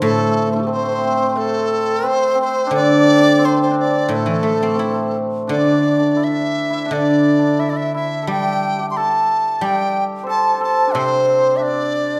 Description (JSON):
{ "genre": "chinese traditional, Chinese chamber ensemble", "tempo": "88 BPM", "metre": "4/4", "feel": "uneven beats, rubato", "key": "D shang mode", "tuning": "A4 = 439 Hz", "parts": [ { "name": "bright reedy large dizi", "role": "melody", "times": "0.0-12.2 s", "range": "D4 to C6", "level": "-21 LUFS", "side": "equal", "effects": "none" }, { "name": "hammered dulcimer", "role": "second line", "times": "0.0-12.2 s", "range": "A3 to C5", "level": "-22 LUFS", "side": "equal", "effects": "none" }, { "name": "guzheng", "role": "accompaniment", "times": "0.0-12.2 s", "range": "A2 to A4", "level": "-22 LUFS", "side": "equal", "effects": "none" } ], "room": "wet recital hall reverb, RT60 1.5 s", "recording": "none", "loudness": "-17 LUFS", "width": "mono", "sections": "0.0-12.2 A section", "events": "none", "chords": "none", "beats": "| 0.03 0.69 1.36 2.03 | 2.71 3.39 4.08 4.79 | 5.50 6.21 6.90 7.59 | 8.27 8.96 9.63 10.29 | 10.95 11.62" }